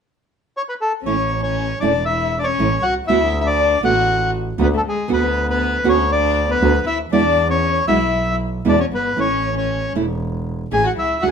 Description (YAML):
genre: tango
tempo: 118 BPM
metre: 4/4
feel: rubato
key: A major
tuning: A4 = 438 Hz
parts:
  - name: bandoneon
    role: melody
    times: 0.6-11.3 s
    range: G#4 to G#5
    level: -19 LUFS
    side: left 1 dB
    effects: none
  - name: warm violin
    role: second line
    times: 1.0-11.3 s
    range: G#3 to G#4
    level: -23 LUFS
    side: left 6 dB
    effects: none
  - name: clear double bass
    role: bass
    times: 1.0-11.3 s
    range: E1 to E2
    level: -22 LUFS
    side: right 1 dB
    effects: none
  - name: nylon-string guitar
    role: accompaniment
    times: 1.1-11.3 s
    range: B2 to F#4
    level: -20 LUFS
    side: right 6 dB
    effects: none
room: moderate studio reverb, RT60 0.9 s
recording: minimal, uncompressed stereo recording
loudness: -16 LUFS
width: side -7 dB against mid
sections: 0.0-1.1 A section; 1.1-11.3 B section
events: none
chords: 0.0 N.C.; 1.1 A; 3.1 D6; 5.1 Bm/D; 7.1 E; 9.2 A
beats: 0.04 0.54 | 1.05 1.56 2.07 2.58 | 3.08 3.59 4.09 4.59 | 5.10 5.61 6.11 6.62 | 7.12 7.63 8.14 8.66 | 9.18 9.69 10.20 10.71 | 11.22